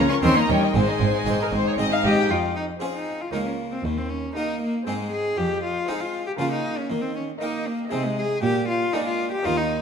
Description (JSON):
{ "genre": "classical, baroque-style concerto movement with solo episodes", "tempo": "118 BPM", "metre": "3/4", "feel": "straight", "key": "Ab major", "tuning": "A4 = 440 Hz", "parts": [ { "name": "clear chamber violin section", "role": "melody", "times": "0.0-9.8 s", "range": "Eb5 to Db6", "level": "-28 LUFS", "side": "left 2 dB", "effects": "none" }, { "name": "rich cello", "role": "melody", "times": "0.0-9.8 s", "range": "G3 to Ab4", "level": "-25 LUFS", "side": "left 2 dB", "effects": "none" }, { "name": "rich symphonic violin section", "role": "second line", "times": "0.0-9.8 s", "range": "Bb4 to G5", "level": "-28 LUFS", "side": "left 5 dB", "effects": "none" }, { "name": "harpsichord", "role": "accompaniment", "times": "0.0-9.8 s", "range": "Db2 to Db5", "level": "-29 LUFS", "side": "right 2 dB", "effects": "none" }, { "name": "rich chamber viola section", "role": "accompaniment", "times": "0.0-9.8 s", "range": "C4 to Bb4", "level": "-32 LUFS", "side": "right 5 dB", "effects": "none" }, { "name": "rich chamber double bass section", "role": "bass", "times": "0.0-2.1 s", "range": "Ab1 to Eb2", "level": "-27 LUFS", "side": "right 4 dB", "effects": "none" }, { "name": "warm studio cello section", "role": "bass", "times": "0.0-9.8 s", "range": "Db2 to Eb3", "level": "-27 LUFS", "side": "right 2 dB", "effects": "none" } ], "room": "moderate recital hall reverb, RT60 1.6 s", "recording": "none", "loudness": "-21 LUFS", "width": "side -6 dB against mid", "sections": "0.0-2.3 A section; 2.3-9.8 B section", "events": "none", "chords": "0.2 Eb7; 0.7 Ab; 2.3 Fm; 3.3 Bbm/Db; 3.8 Eb; 4.9 Ab; 5.4 Fm; 6.4 Bbm/Db; 6.9 Eb; 7.9 Ab/C; 8.4 Bb7" }